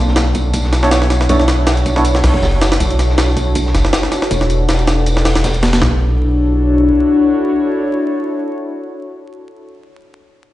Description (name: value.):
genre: drum and bass, jungle.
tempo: 159 BPM.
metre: 4/4.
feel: swing 55% on 16ths.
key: B minor.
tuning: A4 = 440 Hz.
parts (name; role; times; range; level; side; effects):
warbly tape-like pad; sustained chords; 0.0-9.3 s; D4 to C#5; -18 LUFS; left 2 dB; chorus, built-in reverb, phaser.
soft dub sub bass; bass; 0.0-6.9 s; E1 to B1; -14 LUFS; equal; tube saturation.
crunchy breakbeat drum kit; drums; 0.1-5.7 s; hi-hat, snare drum, tambourine; -26 LUFS; equal; high-pass filter on hats, high-pass filter on snare, high-pass filter on perc, high-pass filter on room.
jungle sampler-style drum kit; drums; 0.2-5.9 s; hi-hat, kick drum, snare drum, toms; -17 LUFS; equal; high-pass filter on snare, high-pass filter on hats, high-pass filter on kick, high-pass filter on toms.
deep mellow chord stab; stabs; 0.8-2.0 s; B3 to C#5; -18 LUFS; right 2 dB; chorus, dub echo.
room: moderate echo chamber reverb, RT60 1.3 s, small room ambience.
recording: played on a big sound system in a bare room, large studio reverb, vinyl crackle, nothing above 10.5 kHz.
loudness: -12 LUFS.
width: side -15 dB against mid.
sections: 0.0-5.8 A section; 5.8-8.8 B section.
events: filter sweep on sub bass 0.0-5.8.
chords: 0.0 Bm11; 4.3 Em11; 5.8 Bm11.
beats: 0.16 0.54 0.91 | 1.29 1.67 2.05 2.42 | 2.80 3.18 3.56 3.93 | 4.31 4.69 5.07 5.44 | 5.82 6.20 6.58 6.95 | 7.33 7.71 8.08 8.46.